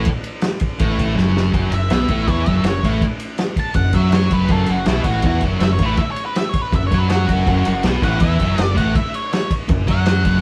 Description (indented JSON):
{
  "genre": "garage rock duo or trio",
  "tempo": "162 BPM",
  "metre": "4/4",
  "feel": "straight",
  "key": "F# minor",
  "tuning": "A4 = 440 Hz",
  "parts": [
    { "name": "thick fuzz guitar", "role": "riff", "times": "0.0-10.4 s", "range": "F#2 to F#4", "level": "-22 LUFS", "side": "equal", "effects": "distortion" },
    { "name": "growling fingered electric bass", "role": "bass", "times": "0.0-10.4 s", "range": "F#1 to F#2", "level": "-23 LUFS", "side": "equal", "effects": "overdrive" },
    { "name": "vintage drum kit", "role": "drums", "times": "0.0-10.3 s", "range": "crash cymbal, kick drum, ride cymbal, snare drum", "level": "-22 LUFS", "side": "equal", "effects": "none" },
    { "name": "octave-fuzz lead guitar", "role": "melody", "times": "1.7-10.4 s", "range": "E4 to A5", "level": "-26 LUFS", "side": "equal", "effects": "distortion" }
  ],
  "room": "moderate stone room reverb, RT60 1.2 s",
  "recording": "band playing live in one room",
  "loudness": "-18 LUFS",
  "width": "mono",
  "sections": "0.0-1.5 A section; 1.5-10.4 B section",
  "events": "drum fill 1.2-1.5; lead electric guitar solo 1.5-10.4",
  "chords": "0.0 F#m"
}